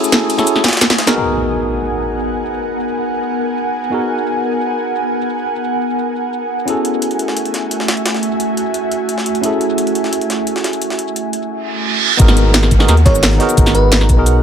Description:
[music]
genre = liquid drum and bass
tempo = 174 BPM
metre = 4/4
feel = straight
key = unclear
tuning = A4 = 439 Hz
[part]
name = tine electric piano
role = accompaniment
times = 0.0-14.4 s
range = B3 to A#4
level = -20 LUFS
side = equal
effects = medium stereo tremolo, dub echo
[part]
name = ethereal airy pad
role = sustained chords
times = 0.0-14.4 s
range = A3 to D#6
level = -19 LUFS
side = right 1 dB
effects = ensemble chorus, built-in reverb, vintage 12-bit sampler grit, sidechain pumping
[part]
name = drum and bass drum kit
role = drums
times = 0.0-14.3 s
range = crash cymbal, hi-hat, ride cymbal, shaker, snare drum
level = -16 LUFS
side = equal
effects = low-pass filter on hats, low-pass filter on perc, low-pass filter on snare, low-pass filter on cymbals, low-pass filter on room
[part]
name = jungle sampler-style drum kit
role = drums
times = 0.1-1.2, 6.7-14.3 s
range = hi-hat, snare drum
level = -20 LUFS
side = equal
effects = high-pass filter on hats, high-pass filter on snare
[part]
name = impact, reverse cymbal and downlifter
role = sound effects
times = 1.2-2.5, 11.7-14.4 s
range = none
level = -21 LUFS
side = right 2 dB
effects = none
[part]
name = smooth synth bass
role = bass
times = 12.2-14.4 s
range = G#1 to D#2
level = -12 LUFS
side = equal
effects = none
[part]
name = electronic kick drum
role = drums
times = 12.2-14.2 s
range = none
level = -12 LUFS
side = equal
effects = none
[part]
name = bell-like FM electric piano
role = melody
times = 13.1-14.0 s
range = B4 to C#5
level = -19 LUFS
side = right 2 dB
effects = chorus, digital delay
[sound]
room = light reverb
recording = none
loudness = -13 LUFS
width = side -8 dB against mid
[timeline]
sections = 0.0-1.2 A section; 1.2-12.2 B section; 12.2-14.4 A section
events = break 0.0-1.2; drop 0.0-1.2, 12.2-14.4; drum fill 0.6-1.2; impact 1.2-2.5; reverse cymbal 11.7-12.2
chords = 0.0 F#m9; 1.2 G#m9; 6.7 F#m9; 12.2 G#m9

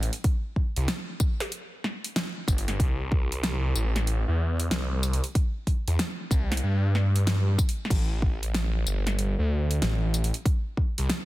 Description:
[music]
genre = glitch hop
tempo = 94 BPM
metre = 4/4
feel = swing 64% on 16ths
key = A minor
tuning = A4 = 441 Hz
[part]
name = phased detuned saw bass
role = bass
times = 0.0-11.1 s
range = G1 to G2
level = -25 LUFS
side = equal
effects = phaser, tube saturation
[part]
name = pop drum kit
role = drums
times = 0.0-11.2 s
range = crash cymbal, hi-hat, snare drum, tambourine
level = -31 LUFS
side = equal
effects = none
[part]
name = electronic kick drum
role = drums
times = 0.2-10.9 s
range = none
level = -25 LUFS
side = equal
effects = none
[sound]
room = little or no reverb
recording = dense, heavily limited modern master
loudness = -24 LUFS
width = side -17 dB against mid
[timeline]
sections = 0.0-11.2 A section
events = none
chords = none

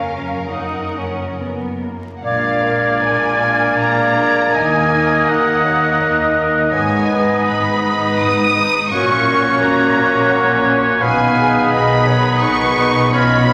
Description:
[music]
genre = classical, slow romantic movement for symphony orchestra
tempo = 63-87 BPM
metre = 3/4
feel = rubato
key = unclear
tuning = A4 = 440 Hz
[part]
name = dark studio violin section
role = melody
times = 0.0-13.5 s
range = E#5 to D#6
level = -25 LUFS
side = equal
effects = none
[part]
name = clear chamber violin section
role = second line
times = 0.0-13.5 s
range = A#4 to D#6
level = -28 LUFS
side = equal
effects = none
[part]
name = rich chamber viola section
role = accompaniment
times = 0.0-13.5 s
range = A#3 to B4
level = -24 LUFS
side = equal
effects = none
[part]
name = dark studio double bass section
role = bass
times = 0.0-13.5 s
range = F#1 to D#2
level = -28 LUFS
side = equal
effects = none
[part]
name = warm chamber cello section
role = bass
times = 0.0-13.5 s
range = D#2 to B2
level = -25 LUFS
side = equal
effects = none
[part]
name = clear oboe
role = second line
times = 2.2-13.5 s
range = B4 to D#5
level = -22 LUFS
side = equal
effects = none
[part]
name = hollow concert flute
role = second line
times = 2.2-13.5 s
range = D#6 to G#6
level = -23 LUFS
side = equal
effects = none
[part]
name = warm clarinet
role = second line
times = 2.2-13.5 s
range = A#4 to F#5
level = -25 LUFS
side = equal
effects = none
[part]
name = clear bassoon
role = accompaniment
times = 2.2-13.5 s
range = A#3 to B3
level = -26 LUFS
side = equal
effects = none
[part]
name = dark French horn section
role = sustained chords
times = 2.3-13.5 s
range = D#3 to D#4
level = -28 LUFS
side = equal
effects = none
[sound]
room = wet concert hall reverb, RT60 1.8 s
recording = vinyl crackle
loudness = -15 LUFS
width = mono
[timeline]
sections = 0.0-2.2 A section; 2.2-13.5 B section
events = none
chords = 0.0 F#; 2.2 A#7; 4.5 D#m; 6.7 G#m; 8.9 F#/A#; 11.0 G#m/B

